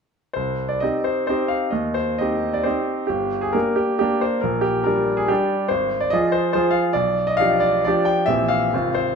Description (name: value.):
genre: classical, romantic triple-time dance for piano with dotted rhythms.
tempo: 121-152 BPM.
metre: 3/4.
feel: rubato.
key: C minor.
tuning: A4 = 439 Hz.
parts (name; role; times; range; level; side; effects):
bright grand piano; solo; 0.3-9.2 s; G1 to G5; -18 LUFS; equal; none.
room: wet large studio reverb, RT60 1.2 s.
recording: dark, warm production.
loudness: -18 LUFS.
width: side -6 dB against mid.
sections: 0.3-9.2 A section.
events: none.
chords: 0.3 Cm; 1.7 Cm/Eb; 3.1 Gm; 4.4 Gm/Bb; 5.7 Fm/Ab; 7.0 G7/B; 8.3 C7/Bb.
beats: | 0.34 0.82 1.29 | 1.74 2.19 2.65 | 3.09 3.54 4.02 | 4.44 4.87 5.30 | 5.71 6.13 6.55 | 6.96 7.39 7.85 | 8.28 8.72.